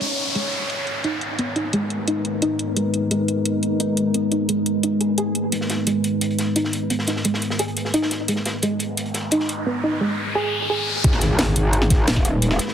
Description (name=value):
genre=dark technical drum and bass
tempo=174 BPM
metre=4/4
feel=straight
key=G# minor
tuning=A4 = 440 Hz
part: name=deep dark ambient pad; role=sustained chords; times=0.0-12.7 s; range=G#3 to B4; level=-24 LUFS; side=equal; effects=chorus, built-in reverb, sidechain pumping
part: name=soft round pluck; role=arpeggios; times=0.0-10.8 s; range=G#3 to G#4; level=-24 LUFS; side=right 1 dB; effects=lush chorus, sidechain pumping, digital delay
part: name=drum and bass drum kit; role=drums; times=0.0-12.7 s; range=hi-hat, snare drum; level=-24 LUFS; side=equal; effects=low-pass filter on hats, low-pass filter on snare, low-pass filter on room
part: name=downlifter, riser and impact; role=sound effects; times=0.0-2.8, 8.9-12.4 s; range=none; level=-26 LUFS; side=left 1 dB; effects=none
part: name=crunchy breakbeat drum kit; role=drums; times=5.5-12.7 s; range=hi-hat, snare drum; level=-30 LUFS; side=equal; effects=high-pass filter on hats, high-pass filter on snare, high-pass filter on room
part: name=metallic wobble bass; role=bass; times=11.0-12.6 s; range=D#1 to G#1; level=-20 LUFS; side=equal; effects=chorus, overdrive
part: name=electronic kick drum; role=drums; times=11.0-12.2 s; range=none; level=-18 LUFS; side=equal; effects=none
room=moderate plate reverb, RT60 1.9 s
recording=heavily compressed radio sound, multiband compression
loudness=-19 LUFS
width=side -9 dB against mid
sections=0.0-11.0 A section; 11.0-12.7 B section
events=filter sweep on ambient pad 0.0-11.0; filter sweep on synth pluck 0.0-11.0; riser 8.9-11.0; drop 11.0-12.7; impact 11.0-12.4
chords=0.0 G#madd9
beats=| 0.01 0.35 0.70 1.04 | 1.39 1.73 2.08 2.42 | 2.77 3.11 3.46 3.80 | 4.14 4.49 4.83 5.18 | 5.53 5.87 6.21 6.56 | 6.90 7.25 7.59 7.94 | 8.28 8.63 8.97 9.32 | 9.66 10.01 10.35 10.70 | 11.04 11.39 11.73 12.08 | 12.42